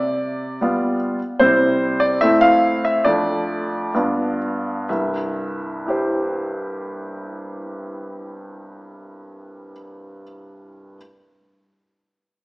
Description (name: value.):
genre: classical-period piano sonatina.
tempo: 62-77 BPM.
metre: 2/4.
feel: rubato.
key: C major.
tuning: A4 = 441 Hz.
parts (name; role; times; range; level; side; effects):
clear baby grand piano; solo; 0.0-11.0 s; C2 to F5; -18 LUFS; equal; none.
room: wet recital hall reverb, RT60 1.7 s.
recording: small speaker sound.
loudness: -17 LUFS.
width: side -25 dB against mid.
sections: 0.0-4.9 A section; 4.9-8.8 B section.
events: slowing down 0.6-4.9.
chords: 0.0 G7/C; 1.4 C; 2.2 Am; 3.1 Dm/F; 4.0 G7; 4.9 C.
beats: 0.60 | 1.40 2.21 | 3.05 3.95 | 4.91 5.87 | 6.83 7.80.